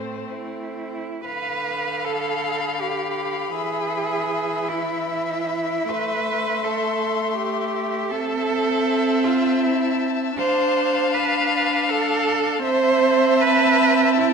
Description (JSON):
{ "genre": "classical, slow romantic movement for string quartet", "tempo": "79 BPM", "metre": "3/4", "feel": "uneven beats, rubato", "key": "A minor", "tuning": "A4 = 442 Hz", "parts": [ { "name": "muted violin", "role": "melody", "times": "0.0-14.3 s", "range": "C5 to C6", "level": "-30 LUFS", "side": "left 10 dB", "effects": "none" }, { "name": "muted violin", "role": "second line", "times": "0.0-14.3 s", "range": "C4 to F5", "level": "-26 LUFS", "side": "left 5 dB", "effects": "none" }, { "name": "muted viola", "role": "accompaniment", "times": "0.0-14.3 s", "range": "D3 to D4", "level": "-25 LUFS", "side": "right 3 dB", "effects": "none" }, { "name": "muted cello", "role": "bass", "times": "0.0-14.3 s", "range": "A2 to C5", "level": "-23 LUFS", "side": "right 3 dB", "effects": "none" } ], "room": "moderate scoring stage reverb, RT60 1.8 s", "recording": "none", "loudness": "-19 LUFS", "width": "side -5 dB against mid", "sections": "0.0-1.3 A section; 1.3-14.3 B section", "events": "none", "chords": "0.0 Am; 1.3 Bdim/D; 3.6 E; 5.9 Am; 8.1 Am/C; 10.4 Dm; 12.6 Am/C", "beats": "0.32 | 1.25 2.05 2.81 | 3.56 4.31 5.07 | 5.89 6.65 7.37 | 8.11 8.86 9.62 | 10.38 11.14 11.89 | 12.64 13.40 14.17" }